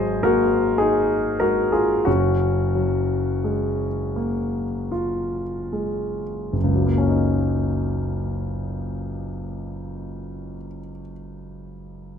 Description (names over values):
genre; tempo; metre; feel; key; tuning
classical, impressionist solo piano; 36-59 BPM; 3/4; rubato; F# major; A4 = 440 Hz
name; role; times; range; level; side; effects
warm concert grand piano; solo; 0.0-12.2 s; F#1 to D#5; -21 LUFS; left 1 dB; none
room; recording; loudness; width
moderate recital hall reverb, RT60 1.5 s; close, detailed microphones; -20 LUFS; side -8 dB against mid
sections
0.0-6.5 A section; 6.5-11.3 B section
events
slowing down 0.0-6.5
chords
0.0 G#9; 2.1 F#maj9; 6.5 F#6